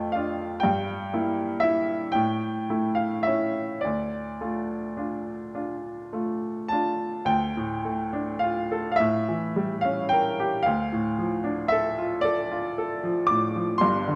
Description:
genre	classical, romantic nocturne for solo piano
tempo	34-41 BPM (dotted quarters)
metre	12/8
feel	rubato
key	D minor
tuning	A4 = 440 Hz
part	bright baby grand piano	solo	0.0-14.2 s	G1 to D6	-26 LUFS	equal	none
room	moderate scoring stage reverb, RT60 1.9 s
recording	dark, warm production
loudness	-27 LUFS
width	mono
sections	0.0-7.3 A section; 7.3-14.2 B section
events	none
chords	0.0 Dm/F; 0.6 Edim/G; 2.2 A7; 3.8 Dm; 9.0 A7b9; 10.7 Dm

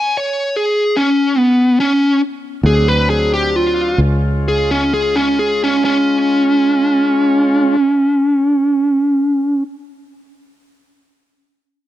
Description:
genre	slow blues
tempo	43-51 BPM (dotted quarters)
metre	12/8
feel	straight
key	unclear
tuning	A4 = 442 Hz
part	smooth overdriven lead guitar	melody	0.0-9.6 s	B3 to G#5	-13 LUFS	equal	none
part	bright tonewheel organ	sustained chords	2.6-7.8 s	F#3 to E#4	-23 LUFS	right 1 dB	overdrive, slow rotary speaker
part	fingered electric bass	bass	2.6-7.8 s	C#2 to D2	-17 LUFS	equal	none
room	little or no reverb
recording	rough home demo mix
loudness	-12 LUFS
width	side -13 dB against mid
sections	0.0-4.0 A section; 4.0-9.5 B section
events	slowing down 0.0-4.0; lead electric guitar solo 0.0-4.0; stop 0.0-2.6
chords	0.0 C#5; 2.6 D7; 4.0 C#

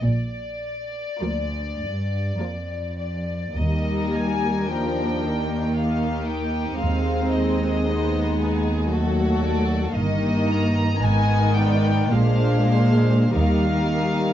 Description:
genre	classical, slow romantic movement for string orchestra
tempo	47-58 BPM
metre	3/4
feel	rubato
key	Eb major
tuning	A4 = 441 Hz
part	warm studio violin section	melody	0.0-14.3 s	D5 to Bb5	-30 LUFS	left 3 dB	none
part	dark symphonic double bass section	bass	0.0-14.3 s	G1 to Eb2	-26 LUFS	right 2 dB	none
part	warm chamber cello section	bass	0.0-14.3 s	D2 to Eb3	-23 LUFS	right 1 dB	none
part	clear symphonic violin section	second line	1.2-14.3 s	D4 to Eb5	-29 LUFS	equal	none
part	rich studio viola section	accompaniment	1.2-14.3 s	Eb3 to C4	-24 LUFS	left 1 dB	none
room	light reverb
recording	dark, warm production, nothing above 7.6 kHz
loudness	-20 LUFS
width	side -11 dB against mid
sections	0.0-14.3 A section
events	none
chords	0.0 Bb; 3.6 Eb; 6.8 Ebdim7; 9.9 Eb/G; 11.0 Abm; 12.1 Bb9; 13.4 Eb

